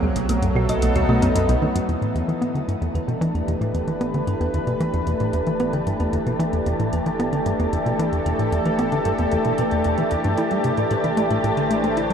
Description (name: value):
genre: ambient, sequencer-driven space music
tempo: 113 BPM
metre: 4/4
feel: straight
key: E minor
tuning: A4 = 443 Hz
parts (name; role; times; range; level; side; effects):
- lush unison pad; sustained chords; 0.0-12.1 s; E3 to C5; -23 LUFS; equal; chorus, shimmer reverb
- tight sequencer bass; riff; 0.0-12.1 s; B1 to E4; -23 LUFS; equal; tape echo
- warm sub bass; bass; 0.0-12.1 s; E1 to B1; -32 LUFS; equal; none
- electronic congas and hi-hat; percussion; 0.0-12.1 s; none; -39 LUFS; left 3 dB; tape echo
- thumb-piano-like synth pluck; arpeggios; 0.3-12.1 s; A3 to B5; -32 LUFS; right 2 dB; none
- wind-like tuned noise texture; texture; 2.7-12.1 s; A4 to A5; -29 LUFS; right 2 dB; built-in reverb, shimmer reverb
room: wet huge ambient reverb, RT60 8.3 s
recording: none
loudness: -19 LUFS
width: side -7 dB against mid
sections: 0.0-1.9 A section; 1.9-12.1 B section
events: fade-in on drum 1.9-12.1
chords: 0.0 B7; 1.9 Em; 10.4 Am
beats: 0.29 0.82 1.35 | 1.89 2.42 2.95 3.48 | 4.01 4.54 5.07 5.60 | 6.13 6.66 7.19 7.72 | 8.26 8.79 9.32 9.85 | 10.38 10.91 11.44 11.97